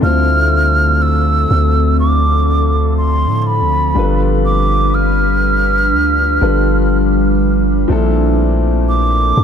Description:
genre	contemporary R&B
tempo	61 BPM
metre	4/4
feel	swing 58% on 16ths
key	D minor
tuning	A4 = 440 Hz
part	breathy mellow concert flute	melody	0.0-9.4 s	B5 to F6	-17 LUFS	right 2 dB	dub echo
part	warm concert grand piano	accompaniment	0.0-9.4 s	Bb2 to C5	-20 LUFS	left 6 dB	none
part	glassy FM pad	sustained chords	0.0-9.4 s	D3 to B4	-18 LUFS	equal	ensemble chorus, built-in reverb
part	long sustained 808-style bass	bass	0.0-9.4 s	G1 to A2	-15 LUFS	equal	none
room	light reverb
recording	echo-heavy mix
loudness	-11 LUFS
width	side -7 dB against mid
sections	0.0-9.4 A section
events	none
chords	0.0 Dm7; 4.0 G7; 7.9 Bbmaj9#11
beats	| 0.03 1.01 2.00 2.98 | 3.96 4.95 5.93 6.91 | 7.90 8.88

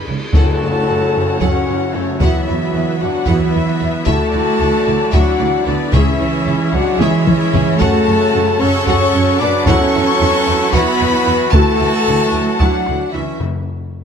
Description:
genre	cinematic, epic orchestral film score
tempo	225 BPM (eighths)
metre	7/8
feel	straight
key	F# minor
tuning	A4 = 438 Hz
part	rich studio violin section	melody	0.0-13.2 s	G#4 to A5	-27 LUFS	left 3 dB	none
part	rich symphonic violin section	second line	0.0-13.4 s	C#5 to D6	-24 LUFS	left 4 dB	none
part	warm symphonic viola section	accompaniment	0.0-13.2 s	A3 to A4	-25 LUFS	right 2 dB	none
part	rich symphonic cello section	bass	0.1-13.4 s	C#3 to D4	-20 LUFS	right 3 dB	none
part	rich symphonic double bass section	bass	0.1-13.2 s	C#2 to F#2	-21 LUFS	right 4 dB	none
part	silver concert flute	second line	0.3-13.4 s	C#5 to D6	-25 LUFS	left 2 dB	none
part	mellow French horn section	sustained chords	0.3-13.4 s	C#4 to D5	-20 LUFS	left 6 dB	none
part	mellow trombone section	sustained chords	0.3-13.4 s	C#3 to C#4	-27 LUFS	right 6 dB	none
part	rich symphonic string section	sustained chords	0.3-13.4 s	C#4 to F#5	-26 LUFS	right 1 dB	none
part	warm trumpet section	stabs	0.3-13.4 s	A3 to B4	-22 LUFS	right 1 dB	none
part	taiko ensemble	drums	0.3-13.1 s	none	-16 LUFS	equal	none
part	tam-tam	percussion	0.3-2.4 s	none	-26 LUFS	left 2 dB	none
part	timpani	percussion	5.9-6.7, 13.4-14.0 s	F#2 to C#3	-21 LUFS	left 1 dB	none
room	light reverb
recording	close, detailed microphones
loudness	-12 LUFS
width	side -7 dB against mid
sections	0.3-14.0 A section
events	band accent 0.3-0.9; drum fill 7.0-7.8; break 13.4-14.0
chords	0.3 F#m; 2.2 Esus2; 4.1 Dadd9; 5.9 C#m; 7.8 F#m; 9.7 Esus2; 11.5 Dadd9; 13.4 N.C.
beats	0.07 | 0.34 0.61 0.87 1.14 1.41 1.67 1.94 | 2.21 2.47 2.74 3.01 3.27 3.54 3.81 | 4.07 4.34 4.61 4.87 5.14 5.41 5.67 | 5.94 6.21 6.47 6.74 7.01 7.27 7.54 | 7.81 8.07 8.34 8.61 8.87 9.14 9.40 | 9.67 9.94 10.21 10.47 10.74 11.01 11.27 | 11.54 11.80 12.07 12.34 12.61 12.87 13.14 | 13.40 13.67 13.94

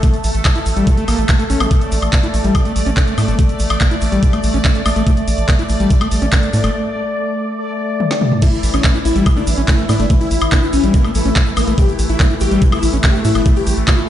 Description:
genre	psychedelic trance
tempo	143 BPM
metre	4/4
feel	straight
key	unclear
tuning	A4 = 440 Hz
part	bubbling stepped-filter texture	sustained chords	0.0-14.1 s	E3 to D5	-21 LUFS	left 1 dB	chorus, built-in reverb, sidechain pumping
part	overdriven acid bass	riff	0.0-14.0 s	G3 to E4	-21 LUFS	moving between left 3 dB and right 4 dB	distortion, auto-pan, sidechain pumping, ping-pong delay
part	drum and bass drum kit	drums	0.0-14.1 s	crash cymbal, handclaps, hi-hat, snare drum, toms, woodblock	-21 LUFS	left 1 dB	overdrive, small room ambience
part	electronic kick drum	drums	0.0-14.0 s	none	-14 LUFS	equal	overdrive, small room ambience
part	egg shaker	percussion	0.0-14.1 s	none	-35 LUFS	right 3 dB	none
part	round analog bass	bass	0.2-13.8 s	G1 to A2	-17 LUFS	equal	none
part	dense compressed supersaw	melody	8.4-14.0 s	A3 to G4	-20 LUFS	left 2 dB	phaser, sidechain pumping, ping-pong delay
room	light reverb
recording	played on a big sound system in a bare room, stone room reverb, nothing above 10.6 kHz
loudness	-12 LUFS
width	side -11 dB against mid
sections	0.0-8.4 A section; 8.4-14.1 B section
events	break 6.7-8.4; drum fill 8.0-8.4; drop 8.4-14.1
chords	0.0 A5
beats	| 0.03 0.45 0.87 1.29 | 1.71 2.13 2.55 2.97 | 3.39 3.81 4.23 4.65 | 5.07 5.49 5.91 6.33 | 6.74 7.16 7.58 8.00 | 8.42 8.84 9.26 9.68 | 10.10 10.52 10.94 11.36 | 11.78 12.20 12.62 13.04 | 13.46 13.88

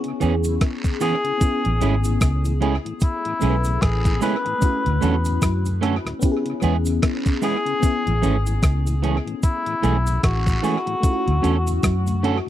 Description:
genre	lovers rock reggae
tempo	75 BPM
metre	4/4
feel	swing 59% on 16ths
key	A major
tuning	A4 = 439 Hz
part	FM electric piano with soft pad layer	accompaniment	0.0-12.5 s	A3 to B4	-27 LUFS	left 3 dB	chorus, phaser
part	gated 80s digital drum machine	drums	0.0-12.5 s	hi-hat, kick drum, rim click	-22 LUFS	equal	none
part	mellow tonewheel organ	accompaniment	0.1-12.5 s	D2 to C#4	-31 LUFS	left 5 dB	slow rotary speaker, tape echo
part	electric guitar at the edge of break-up	stabs	0.2-12.4 s	E3 to A4	-22 LUFS	right 8 dB	none
part	vintage muted fingered electric bass	bass	0.2-12.4 s	G#1 to F#2	-21 LUFS	equal	none
part	cabasa and guiro	percussion	0.2-12.2 s	none	-36 LUFS	right 3 dB	none
part	mellow cor anglais	melody	1.0-12.2 s	E4 to B4	-26 LUFS	left 2 dB	tape echo
room	little or no reverb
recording	dry, close 1970s-style studio recording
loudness	-18 LUFS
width	side -12 dB against mid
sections	0.0-12.5 A section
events	none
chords	0.0 C#m7; 1.4 Amaj7; 4.6 Dmaj7; 6.2 C#m7; 7.8 Amaj7; 11.0 Dmaj7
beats	0.61 | 1.41 2.21 3.02 3.82 | 4.62 5.42 6.22 7.03 | 7.83 8.63 9.43 10.23 | 11.03 11.84

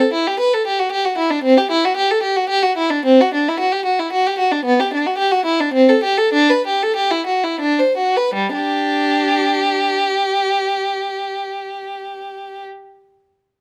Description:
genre	classical, baroque-style suite movement for unaccompanied violin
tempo	80-115 BPM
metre	3/4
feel	rubato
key	G major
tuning	A4 = 440 Hz
part	rich violin	solo	0.0-12.6 s	G3 to C5	-17 LUFS	equal	none
room	little or no reverb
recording	close, detailed microphones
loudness	-17 LUFS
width	mono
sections	0.0-8.3 A section; 8.3-12.7 B section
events	slowing down 3.8-8.3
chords	0.0 A5; 1.4 C (rootless); 3.0 D; 4.6 G/B; 5.7 Am7/C; 6.3 G/D; 7.6 D7; 8.3 G5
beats	0.39 0.92 | 1.44 1.97 2.50 | 3.04 3.58 4.11 | 4.63 5.17 5.73 | 6.34 6.96 7.62 | 8.35 9.07 9.79 | 10.51 11.23 11.94

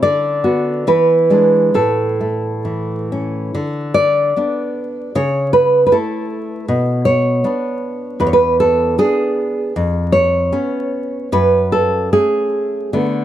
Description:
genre	romantic piece for solo classical guitar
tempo	66-79 BPM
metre	2/4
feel	rubato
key	unclear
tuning	A4 = 438 Hz
part	nylon-string guitar	solo	0.0-13.2 s	E2 to D5	-14 LUFS	equal	none
room	studio ambience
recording	dry, close 1970s-style studio recording, vinyl crackle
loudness	-14 LUFS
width	side -12 dB against mid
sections	0.0-3.5 A section; 3.5-13.2 B section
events	none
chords	0.0 Bm/D; 0.9 E7; 1.8 A; 3.5 Bm/D; 5.1 A/C#; 6.7 Bm; 8.2 E7; 9.8 C#7/E#; 11.3 F#m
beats	| 0.04 0.88 | 1.76 2.66 | 3.55 4.35 | 5.13 5.91 | 6.68 7.45 | 8.22 9.00 | 9.77 10.54 | 11.33 12.13 | 12.93

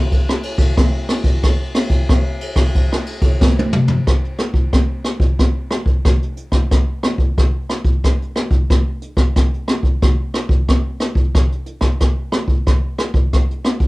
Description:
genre	samba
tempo	91 BPM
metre	4/4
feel	straight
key	none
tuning	none
part	jazz brush drum kit	drums	0.1-13.9 s	hi-hat, kick drum, ride cymbal, rim click, snare drum, toms	-14 LUFS	equal	none
room	light reverb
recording	home recording on cassette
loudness	-15 LUFS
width	side -22 dB against mid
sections	0.0-4.1 A section; 4.1-13.9 B section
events	drum fill 3.4-4.1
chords	none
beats	0.12 0.78 | 1.44 2.10 2.75 3.41 | 4.07 4.73 5.39 6.05 | 6.71 7.38 8.04 8.70 | 9.36 10.03 10.69 11.35 | 12.01 12.67 13.34

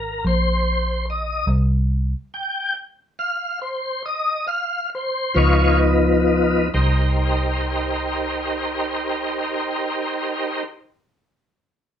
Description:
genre	slow blues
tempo	43-49 BPM (dotted quarters)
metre	12/8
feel	straight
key	C minor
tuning	A4 = 441 Hz
part	tonewheel organ	sustained chords	0.0-10.6 s	F3 to G5	-21 LUFS	equal	slow rotary speaker, chorus vibrato
part	vintage muted fingered electric bass	bass	0.0-10.6 s	Ab1 to Db2	-20 LUFS	equal	none
room	wet studio reverb, RT60 0.5 s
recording	band playing live in one room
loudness	-19 LUFS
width	side -9 dB against mid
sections	0.0-6.7 A section; 6.7-12.0 B section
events	slowing down 0.0-6.7; tonewheel organ solo 0.0-6.7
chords	0.0 Cm7; 1.5 Cmadd11; 5.4 Db7; 6.7 Cm7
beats	0.24 | 1.48 2.74 4.03 5.35 | 6.73 8.13 9.53

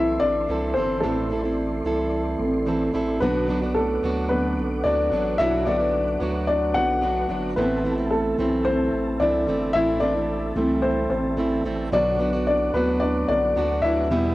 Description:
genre	pop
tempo	110 BPM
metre	4/4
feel	straight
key	unclear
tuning	A4 = 442 Hz
part	dark upright piano	accompaniment	0.0-14.3 s	D3 to F#5	-22 LUFS	left 1 dB	cassette tape
part	mellow tonewheel organ	sustained chords	0.0-14.3 s	A4 to E6	-35 LUFS	equal	chorus vibrato, fast rotary speaker, cassette tape
part	fingerpicked plugged-in steel-string acoustic guitar	riff	0.0-14.3 s	E2 to A4	-27 LUFS	right 2 dB	cassette tape
part	round analog bass	bass	0.0-14.3 s	G1 to E2	-30 LUFS	equal	none
room	light reverb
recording	home recording on cassette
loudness	-20 LUFS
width	side -17 dB against mid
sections	0.0-14.3 A section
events	upright piano solo 0.0-14.3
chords	0.0 Am; 3.2 Bm; 7.6 Am; 11.9 Bm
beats	0.49 | 1.03 1.58 2.12 2.67 | 3.21 3.76 4.30 4.85 | 5.39 5.94 6.48 7.03 | 7.57 8.12 8.66 9.21 | 9.75 10.29 10.84 11.38 | 11.93 12.47 13.02 13.56 | 14.11

